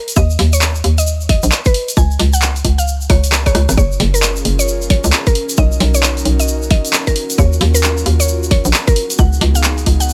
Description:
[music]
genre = UK garage, two-step garage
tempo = 133 BPM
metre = 4/4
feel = swing 62% on 16ths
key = unclear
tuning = A4 = 440 Hz
[part]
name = mallet-like synth pluck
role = melody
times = 0.0-10.1 s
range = A#4 to G#5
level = -24 LUFS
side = equal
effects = chorus
[part]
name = punchy analog drum machine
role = drums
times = 0.1-10.1 s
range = handclaps, hi-hat, rim click, snare drum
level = -20 LUFS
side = equal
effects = none
[part]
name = tube shaker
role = percussion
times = 0.1-10.1 s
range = none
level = -24 LUFS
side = equal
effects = none
[part]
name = hollow knocking FM bass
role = bass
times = 0.2-10.1 s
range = F#1 to D#2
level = -17 LUFS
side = equal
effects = none
[part]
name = electronic kick drum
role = drums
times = 0.2-10.0 s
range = none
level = -15 LUFS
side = equal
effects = none
[part]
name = airy breathy pad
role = sustained chords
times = 4.0-10.1 s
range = B3 to A#4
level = -27 LUFS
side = equal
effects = chorus, sidechain pumping
[sound]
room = digital ambience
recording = none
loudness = -14 LUFS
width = mono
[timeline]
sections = 0.0-10.1 A section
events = drum fill 3.1-3.8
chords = 0.0 D#5; 1.7 C#5; 3.8 F#maj9; 5.4 Bmaj9; 7.2 D#m7; 9.0 C#7sus4

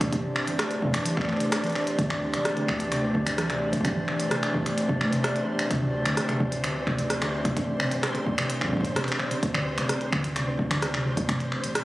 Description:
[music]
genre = IDM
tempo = 129 BPM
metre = 4/4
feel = straight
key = unclear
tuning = A4 = 440 Hz
[part]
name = hollow soft pad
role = sustained chords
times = 0.0-11.8 s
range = E3 to D5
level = -29 LUFS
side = equal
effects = chorus
[part]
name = harp-like synth pluck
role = arpeggios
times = 0.0-11.7 s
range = B2 to A3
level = -31 LUFS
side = equal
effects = chorus, cassette tape, ping-pong delay
[part]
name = round analog bass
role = bass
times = 0.0-11.8 s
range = E1 to D2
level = -38 LUFS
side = equal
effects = tube saturation
[part]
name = electronic kick drum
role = drums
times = 0.0-11.4 s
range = none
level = -27 LUFS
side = equal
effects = none
[part]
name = glitchy drum kit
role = drums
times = 0.0-11.8 s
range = finger snaps, hi-hat, rim click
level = -29 LUFS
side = equal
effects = none
[part]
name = flickering grainy texture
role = texture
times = 0.0-11.8 s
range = C4 to C5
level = -35 LUFS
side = equal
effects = built-in reverb, sidechain pumping
[sound]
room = wet lush hall reverb, RT60 2.3 s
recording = recorded on a phone in the room, club reverb, compression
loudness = -24 LUFS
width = side -17 dB against mid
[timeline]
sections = 0.0-11.8 A section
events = filter sweep on synth pluck 0.0-11.8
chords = 0.1 Am7; 2.0 Dsus2; 3.8 Am9; 5.7 Dsus2; 7.6 Am9; 9.4 Dsus2; 11.3 Am9

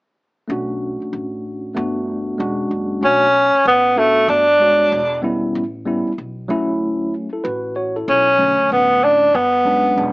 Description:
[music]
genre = hip hop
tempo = 95 BPM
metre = 4/4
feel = swing 64% on 16ths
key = B minor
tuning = A4 = 440 Hz
[part]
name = tine electric piano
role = accompaniment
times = 0.5-10.1 s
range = D3 to C#5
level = -21 LUFS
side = equal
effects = medium stereo tremolo
[part]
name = upright bass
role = bass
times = 0.5-10.1 s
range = E1 to D2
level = -32 LUFS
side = equal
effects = none
[part]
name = breathy tenor saxophone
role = melody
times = 3.0-10.1 s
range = A3 to D4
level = -12 LUFS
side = equal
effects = none
[sound]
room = moderate studio reverb, RT60 0.6 s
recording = small speaker sound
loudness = -15 LUFS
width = side -22 dB against mid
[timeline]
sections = 0.5-3.0 A section; 3.0-10.1 B section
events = none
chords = 0.5 Bm9; 1.8 Gmaj7; 2.4 E13; 3.0 Bm9; 4.3 Gmaj7; 4.9 E5; 5.5 A9; 6.5 Dmaj9; 9.3 Gmaj7

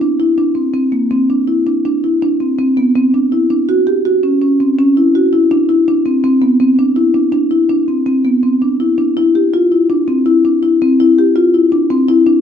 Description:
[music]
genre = contemporary instrumental, contemporary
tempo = 164 BPM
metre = 5/4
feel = straight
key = unclear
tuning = A4 = 441 Hz
[part]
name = marimba with soft mallets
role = solo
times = 0.0-12.4 s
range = Bb3 to G4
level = -10 LUFS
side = left 1 dB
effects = none
[sound]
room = moderate studio reverb, RT60 0.7 s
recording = minimal, uncompressed stereo recording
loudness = -10 LUFS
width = side -8 dB against mid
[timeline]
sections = 0.0-9.2 A section; 9.2-12.4 B section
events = none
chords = none

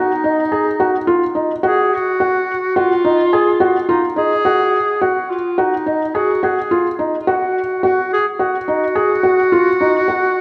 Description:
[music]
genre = contemporary instrumental, contemporary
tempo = 107 BPM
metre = 5/4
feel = straight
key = unclear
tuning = A4 = 441 Hz
[part]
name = clear clarinet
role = second line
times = 0.0-10.4 s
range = D#4 to G#4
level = -20 LUFS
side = equal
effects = none
[part]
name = felt-muted upright piano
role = arpeggios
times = 0.0-10.4 s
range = D#4 to G#4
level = -19 LUFS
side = equal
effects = none
[sound]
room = wet concert hall reverb, RT60 2.0 s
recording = none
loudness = -16 LUFS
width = mono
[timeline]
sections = 0.0-10.4 A section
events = none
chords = 0.0 D#m

